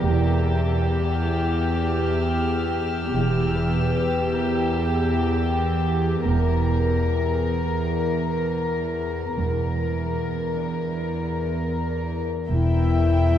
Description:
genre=cinematic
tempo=77 BPM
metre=4/4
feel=straight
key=unclear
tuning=A4 = 441 Hz
part: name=warm studio violin section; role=melody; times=0.0-13.4 s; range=G4 to G5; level=-27 LUFS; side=left 2 dB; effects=none
part: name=warm symphonic cello section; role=bass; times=0.0-13.4 s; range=E2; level=-23 LUFS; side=right 1 dB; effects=none
part: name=warm symphonic double bass section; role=bass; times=0.0-13.2 s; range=E1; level=-29 LUFS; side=right 1 dB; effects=none
part: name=concert harp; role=texture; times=0.0-13.4 s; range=B#3 to E6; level=-36 LUFS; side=left 4 dB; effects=none
part: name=warm chamber violin section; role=texture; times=0.1-5.9, 12.5-13.4 s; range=E6 to G6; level=-37 LUFS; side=left 1 dB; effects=none
part: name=dark clarinet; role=second line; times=12.5-13.4 s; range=E4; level=-26 LUFS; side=left 5 dB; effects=none
part: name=warm symphonic violin section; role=second line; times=12.5-13.4 s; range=E5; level=-28 LUFS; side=equal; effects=none
part: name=dark symphonic viola section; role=accompaniment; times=12.5-13.4 s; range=E4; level=-31 LUFS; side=left 4 dB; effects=none
part: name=marimba with soft mallets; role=riff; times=12.5-13.4 s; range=E2 to E3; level=-22 LUFS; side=left 3 dB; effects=none
room=wet cathedral reverb, RT60 6.1 s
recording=dark, warm production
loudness=-21 LUFS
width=side -10 dB against mid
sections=0.0-12.5 A section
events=none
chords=0.0 Em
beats=| 0.03 0.81 1.59 2.37 | 3.15 3.93 4.71 5.49 | 6.27 7.05 7.83 8.60 | 9.38 10.16 10.94 11.72 | 12.50 13.28

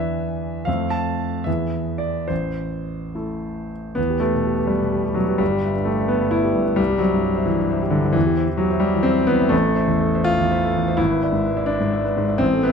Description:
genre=classical, romantic character piece for solo piano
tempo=69-91 BPM (dotted quarters)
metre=6/8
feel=rubato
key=A minor, E minor from 4.0 s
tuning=A4 = 440 Hz
part: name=clear grand piano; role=solo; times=0.0-12.7 s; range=G1 to A5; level=-18 LUFS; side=equal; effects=none
room=light reverb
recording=close, detailed microphones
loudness=-18 LUFS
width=side -6 dB against mid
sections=0.0-4.0 A section; 4.0-12.7 B section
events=none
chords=0.0 E7; 0.7 F; 1.5 E; 2.3 Am; 4.0 Em; 5.4 Em/G; 6.8 C; 8.2 C/E; 9.5 Am; 11.0 E7/G#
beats=| 0.67 1.47 | 2.30 3.16 | 3.98 4.71 | 5.40 6.10 | 6.79 7.48 | 8.16 8.82 | 9.52 10.28 | 10.99 11.70 | 12.41

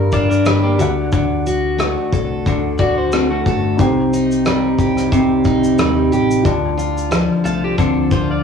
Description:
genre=acoustic pop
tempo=90 BPM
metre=4/4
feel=swing 55% on 16ths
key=unclear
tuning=A4 = 440 Hz
part: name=felt-muted upright piano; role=accompaniment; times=0.0-8.4 s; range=D4 to A5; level=-24 LUFS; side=left 6 dB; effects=cassette tape, plate reverb
part: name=picked steel-string acoustic guitar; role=accompaniment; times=0.0-8.4 s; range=G2 to Bb4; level=-16 LUFS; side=right 1 dB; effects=cassette tape, plate reverb
part: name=hollow-body short-scale fingered electric bass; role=bass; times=0.0-8.4 s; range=G1 to Eb2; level=-23 LUFS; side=left 2 dB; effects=none
part: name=twelve-string electric guitar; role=second line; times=0.1-8.4 s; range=A3 to D5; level=-21 LUFS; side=left 6 dB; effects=cassette tape, plate reverb
part: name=loose indie drum kit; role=drums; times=0.1-8.3 s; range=kick drum, rim click, shaker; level=-21 LUFS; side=left 2 dB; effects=cassette tape
room=moderate booth ambience, RT60 0.2 s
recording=home recording on cassette, studio ambience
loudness=-14 LUFS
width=side -6 dB against mid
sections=0.0-8.4 A section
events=none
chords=0.0 Gm; 0.8 D; 3.8 Cm; 6.4 Dm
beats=0.46 | 1.13 1.79 2.46 3.12 | 3.79 4.45 5.12 5.78 | 6.45 7.11 7.78

